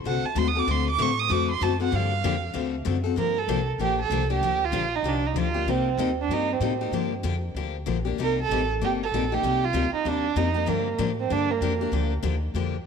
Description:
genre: acoustic string swing (jazz manouche).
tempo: 192 BPM.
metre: 4/4.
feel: swing 61% on 8ths.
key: G minor.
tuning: A4 = 436 Hz.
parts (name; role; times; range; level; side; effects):
upright bass; bass; 0.0-12.8 s; G1 to A2; -28 LUFS; equal; none.
dark violin; melody; 0.1-12.1 s; Bb3 to Eb6; -26 LUFS; right 8 dB; none.
picked steel-string acoustic guitar; accompaniment; 0.1-12.8 s; C3 to A4; -28 LUFS; left 10 dB; none.
room: moderate echo chamber reverb, RT60 2.5 s.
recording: 1960s-style stereo with parts hard left and right.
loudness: -23 LUFS.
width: side -6 dB against mid.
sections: 0.0-3.2 A section; 3.2-12.9 B section.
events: violin solo 0.0-3.2.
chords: 0.0 D7#9; 1.9 Gm7; 2.5 D7; 3.2 Gm7; 5.7 Cm7; 6.9 Gm7; 8.2 Cm7; 10.7 Gm7.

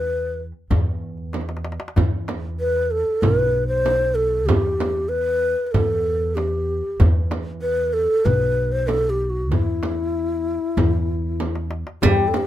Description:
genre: Arabic maqam ensemble.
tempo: 95 BPM.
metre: 4/4.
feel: straight.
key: E minor.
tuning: A4 = 441 Hz.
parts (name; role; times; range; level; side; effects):
breathy mellow low ney; melody; 0.0-12.5 s; E4 to C5; -21 LUFS; equal; none.
upright bass; bass; 0.0-12.3 s; B1 to E2; -23 LUFS; equal; none.
darbuka; percussion; 0.4-12.5 s; none; -25 LUFS; left 2 dB; none.
frame drum; percussion; 0.7-12.5 s; none; -26 LUFS; right 4 dB; none.
oud; second line; 12.0-12.3 s; G3; -20 LUFS; left 4 dB; none.
room: light reverb.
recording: minimal, uncompressed stereo recording.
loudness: -19 LUFS.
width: side -12 dB against mid.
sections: 0.0-12.0 A section.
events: drum fill 1.3-2.0, 11.4-12.0.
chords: none.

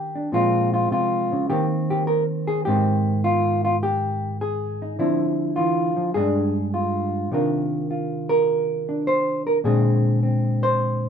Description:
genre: solo jazz.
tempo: 103 BPM.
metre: 4/4.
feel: swing 69% on 8ths.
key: unclear.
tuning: A4 = 441 Hz.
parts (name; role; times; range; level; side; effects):
hollow-body jazz guitar; solo; 0.0-11.1 s; G2 to C5; -20 LUFS; equal; none.
room: wet small room ambience, RT60 0.5 s.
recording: minimal, uncompressed stereo recording.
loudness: -19 LUFS.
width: side -7 dB against mid.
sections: 0.0-11.1 A section.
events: none.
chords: 0.3 Bbm9; 1.5 Eb5; 2.7 Abmaj7; 5.0 Dm9; 6.1 G5; 7.3 Cm11; 9.6 Bb9.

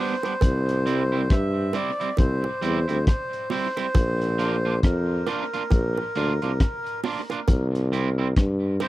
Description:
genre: roots reggae.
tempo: 68 BPM.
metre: 4/4.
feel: swing 60% on 16ths.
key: C mixolydian.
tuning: A4 = 440 Hz.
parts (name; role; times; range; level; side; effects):
melodica; melody; 0.0-8.9 s; Bb4 to E5; -29 LUFS; equal; tape echo.
electric guitar at the edge of break-up; accompaniment; 0.0-8.9 s; G3 to F4; -31 LUFS; right 6 dB; tape echo.
bongos; percussion; 0.2-8.9 s; none; -30 LUFS; right 7 dB; none.
crunchy breakbeat drum kit; drums; 0.3-8.9 s; hi-hat, kick drum, rim click; -21 LUFS; equal; none.
warm tuba; bass; 0.4-8.8 s; Bb1 to G2; -24 LUFS; equal; none.
room: little or no reverb.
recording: dry, close 1970s-style studio recording.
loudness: -21 LUFS.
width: side -16 dB against mid.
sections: 0.4-8.9 A section.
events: none.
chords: 0.4 C; 4.0 Bb; 7.5 C.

